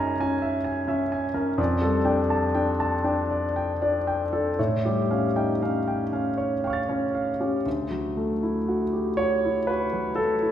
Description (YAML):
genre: classical, impressionist solo piano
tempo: 38-44 BPM (dotted quarters)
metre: 6/8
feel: rubato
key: unclear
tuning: A4 = 440 Hz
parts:
  - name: warm concert grand piano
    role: solo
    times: 0.0-10.5 s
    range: D2 to A6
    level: -23 LUFS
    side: equal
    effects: none
room: wet recital hall reverb, RT60 1.5 s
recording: heard from further back in the room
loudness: -23 LUFS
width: side -10 dB against mid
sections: 0.0-7.7 A section; 7.7-10.5 B section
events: none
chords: 0.0 F#9; 1.6 F69; 4.6 Aaug7; 7.7 Dadd9